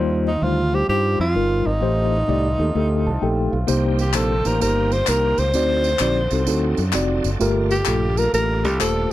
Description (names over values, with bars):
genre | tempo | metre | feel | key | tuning
uptempo gospel | 129 BPM | 4/4 | swing 66% on 8ths | unclear | A4 = 442 Hz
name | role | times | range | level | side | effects
mellow tine electric piano | accompaniment | 0.0-9.1 s | G2 to A5 | -22 LUFS | left 1 dB | medium stereo tremolo
warm French horn section | sustained chords | 0.0-9.1 s | D3 to A4 | -34 LUFS | right 2 dB | none
modern bright fingered electric bass | bass | 0.0-9.1 s | Eb1 to G2 | -22 LUFS | equal | none
breathy tenor saxophone | melody | 0.3-9.1 s | Eb4 to C5 | -22 LUFS | equal | none
bright tonewheel organ | sustained chords | 3.7-9.1 s | D3 to A4 | -32 LUFS | right 4 dB | fast rotary speaker, chorus vibrato
tambourine and handclaps | percussion | 3.7-8.9 s | none | -27 LUFS | left 2 dB | none
room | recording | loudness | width
little or no reverb | dry, close 1970s-style studio recording | -17 LUFS | side -14 dB against mid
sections
0.0-9.1 A section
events
tine electric piano fill 2.8-3.7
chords
0.0 Eb69; 1.8 Am7b5; 3.7 Cm7; 5.5 D7b9; 7.4 Gm9